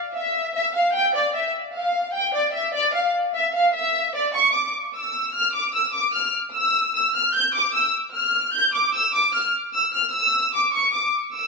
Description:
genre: hip hop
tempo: 150 BPM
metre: 4/4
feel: half-time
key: unclear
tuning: A4 = 440 Hz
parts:
  - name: rich chamber violin section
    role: solo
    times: 0.1-11.5 s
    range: D5 to G6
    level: -19 LUFS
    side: equal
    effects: low-pass filter
room: moderate lush hall reverb, RT60 2.3 s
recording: small room ambience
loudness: -19 LUFS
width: side -3 dB against mid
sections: 0.0-4.3 A section; 4.3-11.5 B section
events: none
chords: none

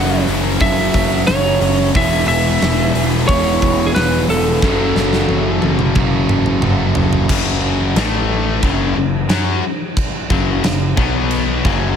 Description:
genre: hard rock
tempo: 90 BPM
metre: 4/4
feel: straight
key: F# minor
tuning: A4 = 440 Hz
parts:
  - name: lightly driven lead guitar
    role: melody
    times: 0.0-6.6 s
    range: G#4 to F#5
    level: -19 LUFS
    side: right 1 dB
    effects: analog delay
  - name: cranked stack guitar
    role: riff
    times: 0.0-12.0 s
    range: E2 to F#4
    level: -21 LUFS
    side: left 11 dB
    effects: overdrive
  - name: overdriven electric guitar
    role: riff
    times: 0.0-7.3 s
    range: E2 to F#3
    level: -20 LUFS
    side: right 11 dB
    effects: none
  - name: sludgy distorted guitar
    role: riff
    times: 0.0-12.0 s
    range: F#2 to A4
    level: -22 LUFS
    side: left 1 dB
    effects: overdrive
  - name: fuzz picked electric bass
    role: bass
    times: 0.0-12.0 s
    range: E1 to F#2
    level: -20 LUFS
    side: equal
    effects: overdrive
  - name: huge arena drum kit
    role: drums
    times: 0.3-11.8 s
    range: crash cymbal, hi-hat, kick drum, snare drum, toms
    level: -19 LUFS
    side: equal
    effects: none
room: small room ambience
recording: none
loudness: -13 LUFS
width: side -8 dB against mid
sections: 0.0-7.3 A section; 7.3-12.0 B section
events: drum fill 4.6-7.3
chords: 0.0 F#m; 1.9 E; 4.6 F#m; 7.3 F#5; 8.0 A5; 8.6 F#5; 11.0 B5

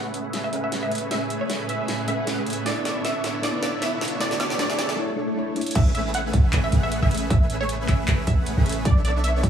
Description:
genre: future bass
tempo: 155 BPM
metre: 4/4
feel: swing 55% on 16ths, half-time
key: A major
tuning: A4 = 440 Hz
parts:
  - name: wide unison pluck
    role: melody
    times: 0.0-9.4 s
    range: C#5 to F#5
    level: -29 LUFS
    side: right 1 dB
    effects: sidechain pumping, digital delay
  - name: soft round pluck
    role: accompaniment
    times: 0.0-5.8 s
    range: A3 to E5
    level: -32 LUFS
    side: left 2 dB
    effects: analog chorus, sidechain pumping, tape echo
  - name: shimmering ambient pad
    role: sustained chords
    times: 0.6-5.0 s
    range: A2 to C#5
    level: -36 LUFS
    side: right 1 dB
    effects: chorus, built-in reverb, sidechain pumping
  - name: dense compressed supersaw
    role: riff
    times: 0.0-9.5 s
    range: A3 to F#5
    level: -28 LUFS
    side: right 1 dB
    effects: sidechain pumping, low-pass filter, tape echo
  - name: riser and swell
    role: sound effects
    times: 0.8-5.8 s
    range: none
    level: -34 LUFS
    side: right 1 dB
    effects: none
  - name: dubstep drum kit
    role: drums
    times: 0.1-9.5 s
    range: crash cymbal, handclaps, hi-hat, snare drum, woodblock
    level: -30 LUFS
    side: equal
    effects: high-pass filter on snare, high-pass filter on hats, high-pass filter on perc, high-pass filter on cymbals
  - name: warm 808-style bass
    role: bass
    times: 5.8-9.5 s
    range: A1 to B1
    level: -23 LUFS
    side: equal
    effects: sidechain pumping
  - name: electronic kick drum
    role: drums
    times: 5.8-9.5 s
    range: none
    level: -20 LUFS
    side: equal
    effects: none
room: moderate digital room reverb, RT60 1.1 s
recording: none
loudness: -21 LUFS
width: side -8 dB against mid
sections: 0.0-5.8 A section; 5.8-9.5 B section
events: build-up 0.0-5.8; drum fill 0.0-5.0, 5.6; filter sweep on supersaw synth 0.0-5.8; riser 0.8-5.0; break 5.0-5.8; swell 5.0-5.8; drop 5.8-9.5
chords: 0.0 Amaj9; 2.7 Bm11; 5.8 Amaj9; 8.9 Bm11

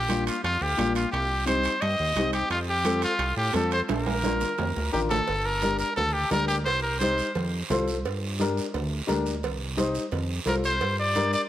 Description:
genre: latin, cumbia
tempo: 174 BPM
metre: 4/4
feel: straight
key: unclear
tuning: A4 = 443 Hz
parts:
  - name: bright trumpet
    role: melody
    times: 0.0-7.3, 10.5-11.4 s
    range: F4 to Eb5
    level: -26 LUFS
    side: equal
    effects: none
  - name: fat analog bass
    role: bass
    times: 0.0-11.4 s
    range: G1 to A2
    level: -30 LUFS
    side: right 1 dB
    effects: none
  - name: dark upright piano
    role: accompaniment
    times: 0.1-11.4 s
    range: Bb3 to C5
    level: -30 LUFS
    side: left 3 dB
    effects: none
  - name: congas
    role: percussion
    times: 0.1-11.3 s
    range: none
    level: -34 LUFS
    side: right 1 dB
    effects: none
  - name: guiro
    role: percussion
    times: 0.1-11.5 s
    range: none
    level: -38 LUFS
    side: right 6 dB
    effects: none
  - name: timbales and cowbell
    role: percussion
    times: 0.1-11.3 s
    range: none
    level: -36 LUFS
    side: right 7 dB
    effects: none
room: moderate plate reverb, RT60 3.4 s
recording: none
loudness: -24 LUFS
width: side -12 dB against mid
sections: 0.0-5.3 A section; 5.3-11.5 B section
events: drum fill 3.9-5.3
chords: 0.0 Bb; 1.1 Cm; 2.5 F; 3.9 Bb; 5.3 Gm; 6.7 Cm; 7.4 F; 8.0 Gm; 9.4 Cm; 10.1 F; 10.8 Gm

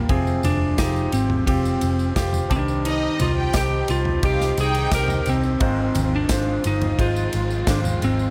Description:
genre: piano-driven pop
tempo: 87 BPM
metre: 4/4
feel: straight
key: unclear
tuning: A4 = 441 Hz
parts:
  - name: lightly driven lead guitar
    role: melody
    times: 0.0-8.3 s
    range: C4 to Bb4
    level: -27 LUFS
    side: equal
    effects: none
  - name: clear baby grand piano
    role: accompaniment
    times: 0.0-8.3 s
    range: G2 to C5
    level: -30 LUFS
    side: equal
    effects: none
  - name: warm studio string section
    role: sustained chords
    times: 0.0-8.3 s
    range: Eb3 to F4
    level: -37 LUFS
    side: equal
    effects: none
  - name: vintage muted picked electric bass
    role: bass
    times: 0.0-8.3 s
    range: F1 to C2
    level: -26 LUFS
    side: equal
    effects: none
  - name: modern studio drum kit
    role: drums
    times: 0.1-8.2 s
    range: kick drum, ride cymbal, snare drum, toms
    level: -28 LUFS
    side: equal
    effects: none
  - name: tambourine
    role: percussion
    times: 0.3-8.3 s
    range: none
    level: -41 LUFS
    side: equal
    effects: none
  - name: warm studio violin section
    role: second line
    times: 2.9-5.2 s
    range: Eb4 to G5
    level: -30 LUFS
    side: equal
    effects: none
room: studio reverb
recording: none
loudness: -21 LUFS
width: mono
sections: 0.0-8.3 A section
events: none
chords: 0.1 Fm; 2.5 Cm; 5.6 Ab6

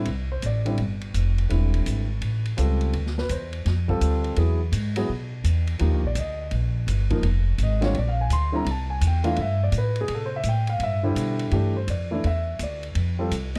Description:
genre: jazz piano trio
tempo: 168 BPM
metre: 4/4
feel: swing 65% on 8ths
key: C major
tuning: A4 = 441 Hz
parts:
  - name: warm grand piano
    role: melody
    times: 0.0-13.6 s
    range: D3 to C6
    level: -30 LUFS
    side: equal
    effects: none
  - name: upright bass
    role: bass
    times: 0.0-13.6 s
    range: E1 to C3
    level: -26 LUFS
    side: equal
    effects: none
  - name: vintage drum kit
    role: drums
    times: 0.1-13.6 s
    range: hi-hat, kick drum, ride cymbal, snare drum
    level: -38 LUFS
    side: equal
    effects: none
room: light reverb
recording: dark, warm production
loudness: -24 LUFS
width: mono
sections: 0.1-11.5 A section; 11.5-13.6 A section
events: grand piano solo 0.1-13.6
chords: 0.1 Csus2; 1.5 E7alt; 2.2 A7alt; 2.9 Dm9; 4.4 Eadd9; 5.8 Ebmaj9; 7.2 Fm; 7.9 Bbadd9; 8.7 C69; 11.5 Dmadd9; 13.0 F5

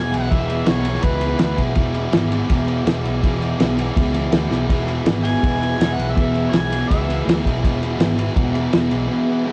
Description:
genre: garage rock duo or trio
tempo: 164 BPM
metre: 4/4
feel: straight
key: E mixolydian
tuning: A4 = 440 Hz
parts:
  - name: overdriven harmonica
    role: melody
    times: 0.0-1.6, 5.2-7.4 s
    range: B4 to G#5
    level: -28 LUFS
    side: equal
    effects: none
  - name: overdriven combo organ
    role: sustained chords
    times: 0.0-9.5 s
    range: E4 to D5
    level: -32 LUFS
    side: equal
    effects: none
  - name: fuzz guitar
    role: riff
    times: 0.0-9.5 s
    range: E2 to E3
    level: -25 LUFS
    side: equal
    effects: distortion
  - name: picked electric bass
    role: bass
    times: 0.0-9.1 s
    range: E1 to D2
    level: -26 LUFS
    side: equal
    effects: overdrive
  - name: cloth-damped thuddy drum kit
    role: drums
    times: 0.1-9.0 s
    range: kick drum, ride cymbal, snare drum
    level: -23 LUFS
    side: equal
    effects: vintage 12-bit sampler grit
room: moderate small room reverb, RT60 0.5 s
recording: rough rehearsal-room recording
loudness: -19 LUFS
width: mono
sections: 0.0-9.5 A section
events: drum fill 4.5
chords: 0.0 E

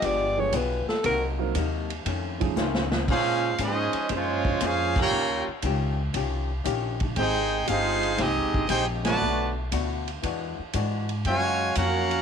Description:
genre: jazz, big band swing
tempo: 117 BPM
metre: 4/4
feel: swing 69% on 8ths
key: Bb minor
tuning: A4 = 440 Hz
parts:
  - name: warm alto saxophone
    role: melody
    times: 0.0-1.3 s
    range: A4 to D5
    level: -26 LUFS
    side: left 1 dB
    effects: none
  - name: archtop guitar, miked and amplified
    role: accompaniment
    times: 0.0-12.1 s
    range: F2 to C5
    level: -33 LUFS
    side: left 14 dB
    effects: none
  - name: dark trombone section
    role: sustained chords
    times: 0.0-2.8 s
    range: Eb3 to G4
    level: -35 LUFS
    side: right 1 dB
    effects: none
  - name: upright bass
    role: bass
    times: 0.0-12.2 s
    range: G1 to Bb2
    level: -30 LUFS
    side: equal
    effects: none
  - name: swinging big-band drum kit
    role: drums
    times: 0.0-12.2 s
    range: crash cymbal, hi-hat, kick drum, ride cymbal, snare drum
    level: -31 LUFS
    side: equal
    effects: none
  - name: warm concert grand piano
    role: accompaniment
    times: 0.4-2.6 s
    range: F3 to Bb4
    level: -31 LUFS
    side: right 12 dB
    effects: none
  - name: brilliant trumpet section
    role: melody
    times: 3.1-12.2 s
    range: Ab3 to A5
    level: -25 LUFS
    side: equal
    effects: none
  - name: clear trombone section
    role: second line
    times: 3.1-12.2 s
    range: Db3 to Ab4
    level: -30 LUFS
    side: right 12 dB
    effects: none
room: light reverb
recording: 1960s-style stereo with parts hard left and right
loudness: -23 LUFS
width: side -7 dB against mid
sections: 0.0-3.1 A section; 3.1-12.2 B section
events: alto saxophone solo 0.0-3.1; drum fill 2.6-3.1; band accent 4.9, 9.0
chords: 0.0 G7b9; 1.0 Cm7b5; 2.1 F7alt; 3.1 Bbm9; 5.1 Eb9; 7.2 Abmaj7; 9.2 Bm7; 10.2 E9; 11.3 Gbmaj7

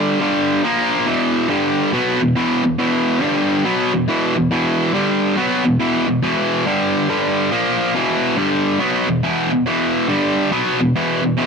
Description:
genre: rock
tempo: 140 BPM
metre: 4/4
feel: swing 64% on 8ths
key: unclear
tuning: A4 = 440 Hz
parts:
  - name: overdriven electric guitar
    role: solo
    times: 0.0-11.5 s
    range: E2 to B3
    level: -15 LUFS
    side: equal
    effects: none
room: digital ambience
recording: dry, close 1970s-style studio recording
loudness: -15 LUFS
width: side -5 dB against mid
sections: 0.0-11.5 A section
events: none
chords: 0.0 G5; 0.6 A#5; 1.1 E5; 1.5 G5; 1.9 E5; 3.2 G5; 3.6 E5; 4.9 G5; 5.4 E5; 6.7 G5; 7.5 A#5; 7.9 E5; 8.4 G5; 8.8 E5; 10.1 G5; 10.5 E5

